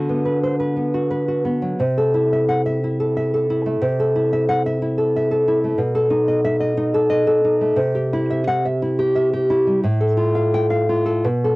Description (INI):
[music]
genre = romantic piece for solo classical guitar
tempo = 89 BPM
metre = 3/4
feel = rubato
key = unclear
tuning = A4 = 435 Hz
[part]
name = nylon-string guitar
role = solo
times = 0.0-11.6 s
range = A2 to G5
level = -17 LUFS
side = equal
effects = cassette tape
[sound]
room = moderate booth ambience, RT60 0.2 s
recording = home recording on cassette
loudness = -17 LUFS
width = side -22 dB against mid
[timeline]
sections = 0.0-11.6 A section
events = none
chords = 0.0 Bm/D; 1.8 F#m7b5/C (rootless); 5.8 B7; 7.8 C; 9.8 F/A